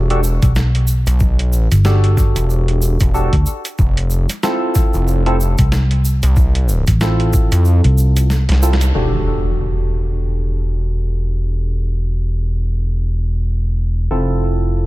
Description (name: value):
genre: glitch hop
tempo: 93 BPM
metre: 4/4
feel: swing 58% on 16ths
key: unclear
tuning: A4 = 440 Hz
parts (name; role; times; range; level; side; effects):
- barky tine electric piano; stabs; 0.0-14.9 s; C4 to A4; -22 LUFS; equal; overdrive, analog chorus, sidechain pumping, ping-pong delay
- gritty driven synth bass; bass; 0.0-14.9 s; E1 to F2; -15 LUFS; equal; none
- boom bap sampler-style drum kit; drums; 0.1-8.9 s; hi-hat, snare drum; -25 LUFS; equal; overdrive, low-pass filter on hats, low-pass filter on snare, low-pass filter on room
- tube shaker; percussion; 0.2-8.9 s; none; -30 LUFS; right 3 dB; none
- vintage muted fingered electric bass; bass; 0.4-8.5 s; G1 to D2; -13 LUFS; equal; none
- electronic kick drum; drums; 0.4-7.5 s; none; -15 LUFS; equal; overdrive
- impact; sound effects; 8.9-11.5 s; none; -27 LUFS; equal; none
room: little or no reverb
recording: none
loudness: -13 LUFS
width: side -18 dB against mid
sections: 0.0-8.9 A section; 8.9-14.9 B section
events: kick drops out 7.7-8.9; drum fill 8.3-8.9; band accent 8.7-9.1; impact 8.9-11.5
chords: 0.0 Em11; 3.8 Fmaj7; 8.9 Em11; 14.1 Fmaj7